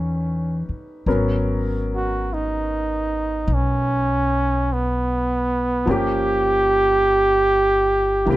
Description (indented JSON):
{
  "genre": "jazz ballad",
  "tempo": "50 BPM",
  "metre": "4/4",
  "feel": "swing 68% on 8ths",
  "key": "unclear",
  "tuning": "A4 = 440 Hz",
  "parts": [
    { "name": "warm flugelhorn", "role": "melody", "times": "0.0-8.4 s", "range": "Cb4 to G4", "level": "-19 LUFS", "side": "right 1 dB", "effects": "plate reverb" },
    { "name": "clear baby grand piano", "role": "accompaniment", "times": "0.0-8.4 s", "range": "E3 to B4", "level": "-26 LUFS", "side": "left 2 dB", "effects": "none" },
    { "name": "upright bass", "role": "bass", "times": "0.0-8.4 s", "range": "G1 to E2", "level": "-24 LUFS", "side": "equal", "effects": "none" }
  ],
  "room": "light reverb",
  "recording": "none",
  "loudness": "-18 LUFS",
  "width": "side -16 dB against mid",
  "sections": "0.0-8.4 A section",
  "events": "none",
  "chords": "0.0 A9; 1.1 Abm11; 5.9 Gm7b5",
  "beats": "| 1.06 2.26 3.46 4.66 | 5.87 7.07 8.27"
}